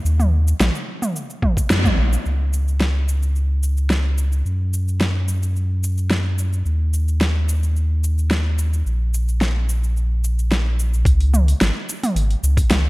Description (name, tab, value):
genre	sunset chillout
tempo	109 BPM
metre	4/4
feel	straight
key	unclear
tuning	A4 = 438 Hz
part	warm sub bass	bass	0.0-12.9 s	G#1 to F#2	-18 LUFS	equal	none
part	deep house drum kit	drums	0.1-12.8 s	hi-hat, shaker, snare drum, toms	-23 LUFS	equal	overdrive
part	electronic kick drum	drums	1.4-1.9, 11.1-12.7 s	none	-18 LUFS	equal	none
room	light reverb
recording	dark, warm production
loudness	-17 LUFS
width	side -21 dB against mid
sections	0.0-2.3 A section; 2.3-11.1 B section; 11.1-12.9 C section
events	band accent 1.7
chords	none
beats	| 0.05 0.60 1.15 1.70 | 2.25 2.80 3.35 3.90 | 4.45 5.00 5.55 6.10 | 6.66 7.21 7.76 8.31 | 8.86 9.41 9.96 10.51 | 11.06 11.61 12.16 12.71